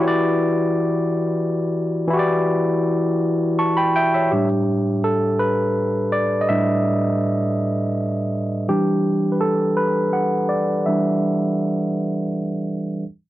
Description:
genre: R&B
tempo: 55 BPM (dotted quarters)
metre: 6/8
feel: straight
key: E minor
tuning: A4 = 440 Hz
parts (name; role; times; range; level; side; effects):
- overdriven tine electric piano; solo; 0.0-13.1 s; A2 to C#6; -18 LUFS; equal; none
room: light reverb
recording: dry, close 1970s-style studio recording, low-pass filter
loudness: -18 LUFS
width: side -15 dB against mid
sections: 0.0-4.3 A section; 4.3-13.0 B section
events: tine electric piano solo 4.3-13.0; filter sweep 4.3-13.0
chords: 0.0 Em9; 4.3 A9sus4; 8.7 Em7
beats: 1.03 | 2.12 3.21 | 4.31 5.40 | 6.49 7.58 | 8.67 9.76 | 10.85 11.94

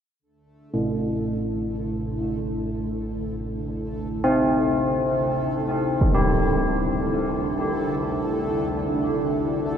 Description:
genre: dark ambient drone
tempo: free time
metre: none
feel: none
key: unclear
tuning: A4 = 438 Hz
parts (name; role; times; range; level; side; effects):
- dark analog pad; sustained chords; 2.2-9.8 s; D4 to A4; -29 LUFS; right 1 dB; chorus
- swarming drone; drone; 1.1-9.8 s; D2 to D3; -36 LUFS; left 1 dB; built-in reverb
- bubbling stepped-filter texture; texture; 0.7-9.8 s; A3 to A4; -36 LUFS; equal; chorus, built-in reverb
- old church bells; arpeggios; 0.7-9.8 s; A2 to G4; -24 LUFS; equal; diffuse ambient delay
- impact; percussion; 6.0-6.2 s; none; -24 LUFS; equal; low-pass filter on sfx
room: wet huge ambient reverb, RT60 8.1 s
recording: none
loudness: -22 LUFS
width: side -8 dB against mid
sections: 0.2-9.8 A section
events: fade-in on synth drone 0.2-9.8; fade-in on analog synth pad 0.2-9.8; fade-in on synth texture 0.2-9.8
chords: 0.2 Dsus2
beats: free time

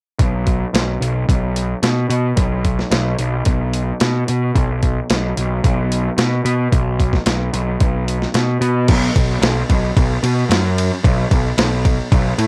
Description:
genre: heavy metal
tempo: 111 BPM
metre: 4/4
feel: straight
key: unclear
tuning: A4 = 440 Hz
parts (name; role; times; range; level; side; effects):
- fuzz picked electric bass; bass; 0.2-12.5 s; B1 to B2; -20 LUFS; equal; overdrive
- boom bap sampler-style drum kit; drums; 0.2-12.5 s; crash cymbal, hi-hat, kick drum, ride cymbal, snare drum; -20 LUFS; equal; cassette tape
room: little or no reverb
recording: home recording on cassette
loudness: -17 LUFS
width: mono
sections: 0.2-8.9 A section; 8.9-12.5 B section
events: kick and snare drop out 8.6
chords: none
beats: | 0.20 0.74 1.29 1.83 | 2.38 2.92 3.46 4.01 | 4.55 5.09 5.64 6.18 | 6.72 7.27 7.81 8.35 | 8.89 9.43 9.97 10.51 | 11.04 11.58 12.12

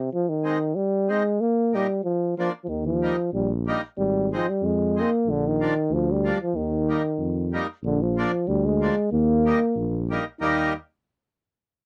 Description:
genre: alpine folk, alpine dance band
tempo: 93 BPM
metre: 2/4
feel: swing 54% on 8ths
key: Eb major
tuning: A4 = 439 Hz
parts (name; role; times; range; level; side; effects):
- mellow euphonium; melody; 0.0-10.7 s; C3 to Eb4; -25 LUFS; equal; none
- accordion; accompaniment; 0.4-10.7 s; Bb2 to Eb4; -29 LUFS; equal; none
- dark tuba; bass; 2.7-10.7 s; Ab1 to F2; -28 LUFS; equal; none
room: little or no reverb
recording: dry, close 1970s-style studio recording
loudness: -24 LUFS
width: mono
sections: 0.0-7.8 A section; 7.8-10.4 B section; 10.4-11.7 C section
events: none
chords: 0.1 Ab; 1.4 Eb/Bb; 2.0 Bb; 2.7 Eb; 4.0 Ab; 5.3 Bb; 6.5 Eb; 7.8 Bb; 9.1 Eb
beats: | 0.10 0.74 | 1.39 2.03 | 2.68 3.33 | 3.97 4.62 | 5.26 5.90 | 6.54 7.18 | 7.83 8.47 | 9.12 9.76 | 10.41

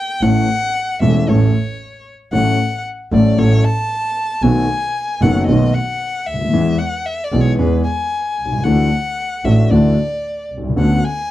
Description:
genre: tango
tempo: 114 BPM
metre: 4/4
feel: rubato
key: A major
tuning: A4 = 440 Hz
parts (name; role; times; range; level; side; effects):
- warm violin; second line; 0.0-11.3 s; B4 to A5; -21 LUFS; left 2 dB; none
- warm concert grand piano; accompaniment; 0.2-11.0 s; E1 to A4; -15 LUFS; left 2 dB; none
- clear double bass; bass; 0.2-11.0 s; E1 to E2; -17 LUFS; right 2 dB; none
room: moderate studio ambience, RT60 0.5 s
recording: dark, warm production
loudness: -14 LUFS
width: side -14 dB against mid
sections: 0.2-11.3 A section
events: stop 0.0; violin solo 0.2-11.3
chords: 0.2 A; 2.3 F#m/A; 4.4 B7; 6.5 E; 8.7 Dadd9; 10.8 Bmadd9/D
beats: | 0.22 0.75 1.27 1.80 | 2.33 2.85 3.38 3.90 | 4.43 4.96 5.48 6.01 | 6.53 7.06 7.59 8.12 | 8.65 9.18 9.71 10.24 | 10.77 11.29

